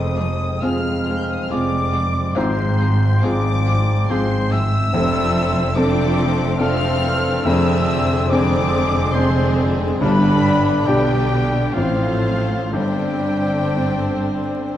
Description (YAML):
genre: classical, romantic movement for piano and orchestra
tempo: 58-73 BPM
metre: 3/4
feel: rubato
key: unclear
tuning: A4 = 440 Hz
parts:
  - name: rich studio violin section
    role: melody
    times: 0.0-14.8 s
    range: F5 to G6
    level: -30 LUFS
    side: left 4 dB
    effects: none
  - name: warm baby grand piano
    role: melody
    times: 0.0-14.8 s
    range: F1 to D5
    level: -22 LUFS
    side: left 1 dB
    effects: none
  - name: mellow hollow silver concert flute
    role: second line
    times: 0.0-14.7 s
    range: F5 to F6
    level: -29 LUFS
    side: left 2 dB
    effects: none
  - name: warm clarinet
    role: second line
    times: 0.0-14.8 s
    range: D4 to A4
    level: -31 LUFS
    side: left 2 dB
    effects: none
  - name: warm oboe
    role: second line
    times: 0.0-14.7 s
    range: F4 to F5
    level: -28 LUFS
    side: right 1 dB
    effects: none
  - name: mellow bassoon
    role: accompaniment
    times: 0.0-14.8 s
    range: C4 to D4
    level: -28 LUFS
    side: equal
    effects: none
  - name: clear French horn section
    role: sustained chords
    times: 0.0-14.8 s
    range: F3 to D4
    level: -26 LUFS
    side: left 2 dB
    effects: none
  - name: rich studio double bass section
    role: bass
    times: 0.0-14.8 s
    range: F1 to B1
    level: -23 LUFS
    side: right 1 dB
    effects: none
  - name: rich symphonic cello section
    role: bass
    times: 0.0-14.8 s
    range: F2 to B2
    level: -24 LUFS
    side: right 1 dB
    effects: none
  - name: clear studio violin section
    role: second line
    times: 0.1-14.8 s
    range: C4 to C5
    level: -31 LUFS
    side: left 3 dB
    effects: none
  - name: rich studio viola section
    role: accompaniment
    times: 0.2-14.7 s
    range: D3 to C4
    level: -28 LUFS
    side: right 1 dB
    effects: none
  - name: timpani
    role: percussion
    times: 10.0-11.3 s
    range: none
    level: barely audible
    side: none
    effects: none
room: wet concert hall reverb, RT60 1.8 s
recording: dark, warm production, vinyl crackle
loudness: -16 LUFS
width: side -11 dB against mid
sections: 0.0-14.8 A section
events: none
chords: 0.0 Fm; 2.4 Fm/Ab; 4.9 Dm7/F; 7.5 Dm7b5/F; 10.0 G; 11.8 F/A; 12.7 Gsus4